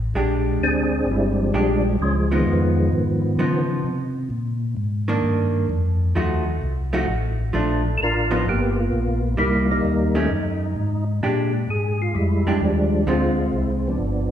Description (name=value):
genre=jazz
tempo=130 BPM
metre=4/4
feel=swing 68% on 8ths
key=Bb mixolydian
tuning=A4 = 440 Hz
part: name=mellow tonewheel organ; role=bass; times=0.0-14.3 s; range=G1 to Db3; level=-23 LUFS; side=equal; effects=chorus vibrato, slow rotary speaker
part: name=vintage hollow-body jazz guitar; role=accompaniment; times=0.2-13.4 s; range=D3 to G4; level=-25 LUFS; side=right 1 dB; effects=none
part: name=percussive tonewheel organ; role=melody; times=0.6-3.7, 8.0-14.3 s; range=Eb3 to Bb4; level=-22 LUFS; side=equal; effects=slow rotary speaker, chorus vibrato
room=wet scoring stage reverb, RT60 1.9 s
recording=recorded in a church or concert hall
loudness=-19 LUFS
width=side -10 dB against mid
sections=0.1-14.3 A section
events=none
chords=0.1 Bb13; 2.0 Db9; 3.8 Cm9; 5.7 F7b9; 7.5 Bbmaj7; 8.5 G7#9; 9.4 Cm7; 10.3 Ebmadd11/Gb; 11.2 Bb6; 13.1 Dm7b5